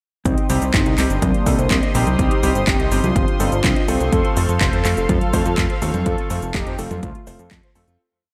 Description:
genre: italo disco.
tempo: 124 BPM.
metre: 4/4.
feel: straight.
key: C dorian.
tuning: A4 = 441 Hz.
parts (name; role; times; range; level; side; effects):
mellow synth brass; melody; 0.3-7.9 s; A3 to C5; -28 LUFS; equal; chorus, digital delay.
warm analog pad; sustained chords; 0.3-8.0 s; G4 to Eb6; -31 LUFS; equal; chorus.
mellow electric guitar; arpeggios; 0.3-8.0 s; A3 to Eb5; -29 LUFS; equal; digital delay.
fat analog bass; bass; 0.3-8.0 s; F1 to F2; -24 LUFS; equal; tube saturation.
electronic kick drum; drums; 0.3-7.6 s; none; -24 LUFS; equal; overdrive.
house drum kit; drums; 0.3-8.0 s; cabasa, congas, handclaps, hi-hat; -27 LUFS; equal; overdrive, gated reverb.
bright concert grand piano; stabs; 0.5-8.0 s; C3 to C5; -29 LUFS; equal; none.
room: light reverb, digital ambience.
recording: none.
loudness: -18 LUFS.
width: mono.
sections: 0.3-8.0 chorus.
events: fade-out 5.4-8.0.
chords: 0.3 Cm; 4.1 F.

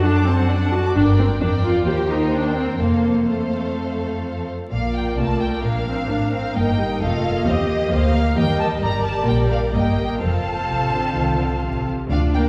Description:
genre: quick classical-period movement for string orchestra.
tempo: 130 BPM.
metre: 4/4.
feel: rubato.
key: Bb major.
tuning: A4 = 440 Hz.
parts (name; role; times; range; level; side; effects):
warm studio violin section; melody; 0.0-12.4 s; Eb5 to Bb5; -30 LUFS; equal; none.
rich studio violin section; second line; 0.0-12.5 s; G4 to D6; -29 LUFS; equal; none.
rich studio viola section; accompaniment; 0.0-12.5 s; G3 to G4; -25 LUFS; equal; none.
warm studio cello section; bass; 0.0-12.5 s; D2 to Eb3; -26 LUFS; equal; none.
warm studio double bass section; bass; 1.0-12.5 s; F1 to Eb2; -27 LUFS; equal; none.
room: wet scoring stage reverb, RT60 1.6 s.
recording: heard from further back in the room, vinyl crackle.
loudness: -20 LUFS.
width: mono.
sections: 0.0-4.7 A section; 4.7-12.5 B section.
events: none.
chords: 0.0 D/F#; 1.0 Gm; 1.9 Cm7/Eb; 2.8 F; 4.7 Bb; 6.6 Eb; 10.2 F.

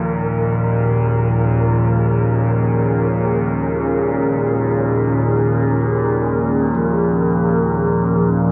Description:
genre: ambient.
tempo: free time.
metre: none.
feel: none.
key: unclear.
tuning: A4 = 435 Hz.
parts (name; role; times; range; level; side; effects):
deep dark ambient pad; sustained chords; 0.7-8.5 s; Eb3 to F5; -23 LUFS; equal; chorus, built-in reverb.
quartz singing bowl; arpeggios; 0.0-8.5 s; F3; -26 LUFS; equal; delay.
overtone-sweeping drone; drone; 0.0-8.5 s; Eb2 to Bb2; -20 LUFS; equal; chorus, built-in reverb.
wind-like tuned noise texture; texture; 0.0-8.5 s; Bb4; -27 LUFS; equal; built-in reverb.
room: wet huge ambient reverb, RT60 7.7 s.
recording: worn, warbling old tape, cassette tape, warbly pitch drift.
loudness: -17 LUFS.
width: mono.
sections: 0.0-8.5 A section.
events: none.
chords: 0.0 Db/Eb.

